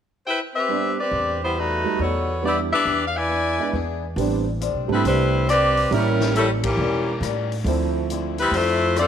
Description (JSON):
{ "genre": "jazz, big band swing", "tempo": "138 BPM", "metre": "4/4", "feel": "swing 65% on 8ths", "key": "A minor", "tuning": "A4 = 440 Hz", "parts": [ { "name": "bright saxophone section", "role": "melody", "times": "0.3-9.1 s", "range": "E3 to G#5", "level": "-21 LUFS", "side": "left 1 dB", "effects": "none" }, { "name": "picked swing-style acoustic guitar", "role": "accompaniment", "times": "0.7-9.1 s", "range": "A2 to G#4", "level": "-30 LUFS", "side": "left 9 dB", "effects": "none" }, { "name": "warm grand piano", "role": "accompaniment", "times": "0.7-8.3 s", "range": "F3 to F#4", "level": "-26 LUFS", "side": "right 11 dB", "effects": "none" }, { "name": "upright bass", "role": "bass", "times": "1.1-9.1 s", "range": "E1 to A2", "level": "-25 LUFS", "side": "equal", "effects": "none" }, { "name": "swinging big-band drum kit", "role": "drums", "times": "4.2-9.1 s", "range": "hi-hat, kick drum, ride cymbal, rim click, snare drum", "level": "-33 LUFS", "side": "left 6 dB", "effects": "none" } ], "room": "moderate echo chamber reverb, RT60 1.4 s, small room ambience", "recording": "1960s-style stereo with parts hard left and right", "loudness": "-19 LUFS", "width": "side -8 dB against mid", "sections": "0.7-4.2 A section; 4.2-9.1 B section", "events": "band accent 6.6", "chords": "0.0 Cmaj7; 0.7 Am11; 1.6 B7b13; 2.4 Em7; 3.3 E7; 4.2 Am11; 5.9 A7b9; 7.7 Dm9" }